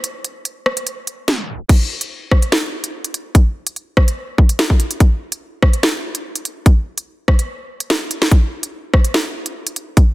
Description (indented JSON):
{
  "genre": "hip hop",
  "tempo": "145 BPM",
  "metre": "4/4",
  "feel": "half-time",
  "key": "none",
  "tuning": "none",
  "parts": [
    { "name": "drill drum kit", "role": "drums", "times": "0.0-10.1 s", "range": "crash cymbal, hi-hat, kick drum, rim click, snare drum", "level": "-14 LUFS", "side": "equal", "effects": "none" }
  ],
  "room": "digital ambience",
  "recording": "dense, heavily limited modern master, tape stop",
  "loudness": "-15 LUFS",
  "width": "side -19 dB against mid",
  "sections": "0.0-1.7 A section; 1.7-10.1 B section",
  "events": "break 0.0-1.7, 7.5-8.3; tape stop 1.3-1.7",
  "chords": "none"
}